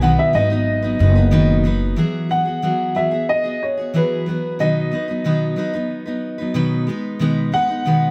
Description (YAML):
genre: acoustic pop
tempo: 92 BPM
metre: 4/4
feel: straight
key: unclear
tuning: A4 = 440 Hz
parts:
  - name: dark upright piano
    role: melody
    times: 0.0-8.1 s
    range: B4 to F#5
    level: -23 LUFS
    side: equal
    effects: none
  - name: picked steel-string acoustic guitar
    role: accompaniment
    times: 0.0-8.1 s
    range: B2 to B4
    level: -22 LUFS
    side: equal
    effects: none
  - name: upright bass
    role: bass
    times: 0.0-1.9 s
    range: F#1 to B1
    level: -19 LUFS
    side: equal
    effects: none
room: light reverb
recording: none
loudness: -19 LUFS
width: mono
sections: 0.0-2.0 A section; 2.0-8.1 B section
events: none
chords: 0.0 B; 2.0 Eadd9; 4.6 B; 6.9 G#m/B